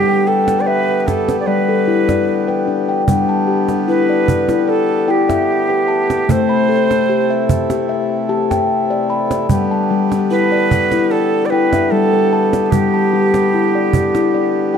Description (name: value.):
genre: world meditative, meditative tuned percussion.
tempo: 74 BPM.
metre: 4/4.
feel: straight.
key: G major.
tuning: A4 = 441 Hz.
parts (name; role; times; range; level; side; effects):
Native American-style cedar flute; melody; 0.0-14.8 s; G4 to D5; -17 LUFS; right 5 dB; none.
pedal harmonium; sustained chords; 0.0-14.8 s; C3 to G4; -21 LUFS; right 1 dB; none.
steel tongue drum; arpeggios; 0.0-14.8 s; G3 to B5; -16 LUFS; left 5 dB; ping-pong delay.
cajon; percussion; 0.5-14.4 s; none; -20 LUFS; right 4 dB; none.
room: moderate echo chamber reverb, RT60 1.3 s, studio reverb.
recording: dark, warm production.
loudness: -13 LUFS.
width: side -7 dB against mid.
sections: 0.0-3.1 A section; 3.1-14.8 B section.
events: none.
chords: 0.0 G; 6.3 Am; 9.5 G.